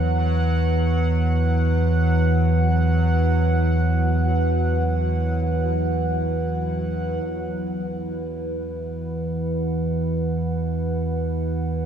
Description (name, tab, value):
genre	dark ambient drone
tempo	free time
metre	none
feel	none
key	unclear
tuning	A4 = 437 Hz
part	dark analog pad	sustained chords	0.0-11.9 s	E4 to F#5	-27 LUFS	right 2 dB	chorus
part	deep rumbling drone	drone	0.0-11.9 s	E2 to E3	-21 LUFS	equal	built-in reverb
part	bubbling stepped-filter texture	texture	0.0-7.2 s	F#3 to F#5	-30 LUFS	equal	chorus, built-in reverb
room	light reverb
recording	none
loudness	-20 LUFS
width	side -8 dB against mid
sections	0.0-7.2 A section; 7.2-11.9 B section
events	none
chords	0.0 Esus2